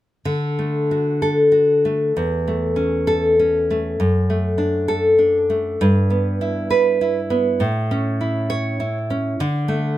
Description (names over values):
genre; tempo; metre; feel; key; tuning
romantic piece for solo classical guitar; 92-103 BPM; 3/4; rubato; D major; A4 = 440 Hz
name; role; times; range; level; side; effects
nylon-string guitar; solo; 0.3-10.0 s; E2 to C#5; -17 LUFS; equal; none
room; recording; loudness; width
light reverb; close, detailed microphones; -17 LUFS; side -14 dB against mid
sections
0.2-10.0 A section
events
none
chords
0.2 D; 2.1 A/E; 4.0 D/F#; 5.8 Em/G; 7.6 A; 9.4 D5